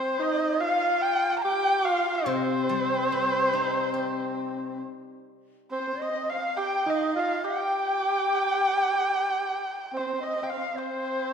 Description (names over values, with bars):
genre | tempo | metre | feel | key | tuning
chinese traditional | 66-74 BPM | 4/4 | rubato | C yu mode | A4 = 441 Hz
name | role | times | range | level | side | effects
dark erhu | melody | 0.0-11.3 s | C5 to Bb5 | -28 LUFS | right 1 dB | none
large dizi | second line | 0.0-11.3 s | C5 to G5 | -30 LUFS | left 5 dB | none
warm tenor saxophone | second line | 0.0-11.3 s | C4 to G4 | -30 LUFS | right 4 dB | none
steel-string zither | accompaniment | 2.3-5.7 s | C3 to G4 | -30 LUFS | left 6 dB | none
room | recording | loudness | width
wet scoring stage reverb, RT60 1.8 s | minimal, uncompressed stereo recording | -24 LUFS | side -7 dB against mid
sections
0.0-5.7 A section; 5.7-11.3 B section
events
none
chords
none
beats
0.61 1.44 | 2.28 3.10 3.94 4.83 | 5.71 6.58 7.44 8.29 | 9.12 9.95 10.77